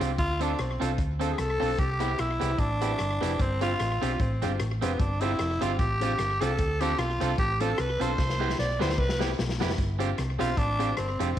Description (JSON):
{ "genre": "ska", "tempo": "150 BPM", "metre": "4/4", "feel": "swing 56% on 8ths", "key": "G mixolydian", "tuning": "A4 = 437 Hz", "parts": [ { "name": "electric guitar at the edge of break-up", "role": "accompaniment", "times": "0.0-11.3 s", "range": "B3 to A4", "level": "-33 LUFS", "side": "right 9 dB", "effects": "slapback echo" }, { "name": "clear upright piano", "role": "stabs", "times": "0.0-11.3 s", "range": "C4 to C5", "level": "-36 LUFS", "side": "left 10 dB", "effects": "none" }, { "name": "hollow-body short-scale fingered electric bass", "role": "bass", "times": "0.0-11.4 s", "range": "F1 to D2", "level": "-30 LUFS", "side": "equal", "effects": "none" }, { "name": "vintage drum kit", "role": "drums", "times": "0.0-11.4 s", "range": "hi-hat, kick drum, rim click, snare drum", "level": "-32 LUFS", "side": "left 1 dB", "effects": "slapback echo" }, { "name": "growling tenor saxophone", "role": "melody", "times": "0.2-11.4 s", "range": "B3 to D5", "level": "-29 LUFS", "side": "equal", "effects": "slapback echo" } ], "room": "light reverb", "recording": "1960s-style stereo with parts hard left and right, vinyl crackle", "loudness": "-25 LUFS", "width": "side -11 dB against mid", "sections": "0.0-9.8 A section; 9.8-11.4 A section", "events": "tenor saxophone solo 0.0-9.8, 9.8-11.4; drum fill 8.2-9.8", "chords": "0.2 Dm7; 1.8 Cmaj7; 3.4 G7sus4; 6.6 Dm7; 8.2 Cmaj7; 9.8 G7sus4" }